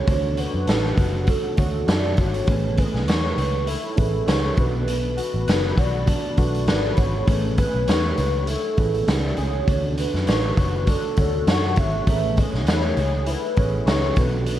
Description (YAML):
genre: indie pop, bedroom pop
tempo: 100 BPM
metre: 4/4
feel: swing 55% on 16ths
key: A major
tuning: A4 = 438 Hz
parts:
  - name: warbly nostalgic lead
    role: melody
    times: 0.0-14.6 s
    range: A4 to F#5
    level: -27 LUFS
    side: equal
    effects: tremolo, wide subtle chorus, analog delay
  - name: electric guitar through a small old amp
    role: accompaniment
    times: 0.0-14.6 s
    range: B2 to C#5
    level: -29 LUFS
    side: left 2 dB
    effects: analog chorus, warbly pitch drift
  - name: warm upright piano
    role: accompaniment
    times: 0.0-14.6 s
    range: C#3 to D5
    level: -31 LUFS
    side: right 5 dB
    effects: cassette tape
  - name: vintage muted picked electric bass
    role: bass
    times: 0.1-14.6 s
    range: F#1 to F#2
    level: -24 LUFS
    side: equal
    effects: none
  - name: raw garage drum kit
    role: drums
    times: 0.1-14.6 s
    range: hi-hat, kick drum, snare drum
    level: -22 LUFS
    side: equal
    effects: none
room: light reverb, small room ambience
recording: dark, warm production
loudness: -19 LUFS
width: side -12 dB against mid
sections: 0.0-14.6 A section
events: none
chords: 0.1 Dmaj7; 2.5 Amaj9; 4.6 Bm7; 7.3 Amaj9; 9.7 Dmaj7; 12.1 Amaj9